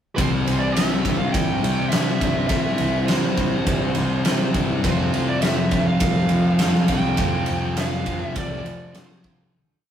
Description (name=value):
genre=rock, shoegaze and dream pop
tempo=102 BPM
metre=4/4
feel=straight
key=C major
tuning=A4 = 440 Hz
part: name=smooth overdriven lead guitar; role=melody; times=0.2-9.4 s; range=C5 to G5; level=-28 LUFS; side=right 2 dB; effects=none
part: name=shimmering ambient pad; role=sustained chords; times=1.3-9.5 s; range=G3 to C5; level=-33 LUFS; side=equal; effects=none
part: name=twelve-string electric guitar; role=arpeggios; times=0.2-9.5 s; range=G3 to A4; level=-35 LUFS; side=equal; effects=none
part: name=overdriven electric guitar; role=riff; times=0.2-9.5 s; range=F2 to G4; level=-29 LUFS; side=right 6 dB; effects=none
part: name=thick fuzz guitar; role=riff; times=0.2-9.5 s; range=F2 to C4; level=-23 LUFS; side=left 3 dB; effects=distortion
part: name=fuzz picked electric bass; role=bass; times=0.2-9.5 s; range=C2 to F3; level=-28 LUFS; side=equal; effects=overdrive
part: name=big rock drum kit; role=drums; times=0.2-9.4 s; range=kick drum, ride cymbal, snare drum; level=-23 LUFS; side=equal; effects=none
room=moderate studio reverb, RT60 0.6 s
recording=rough rehearsal-room recording, warm saturation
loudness=-18 LUFS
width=side -9 dB against mid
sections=0.2-9.5 verse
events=fade-out 7.2-9.5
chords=0.2 C; 4.8 Fadd9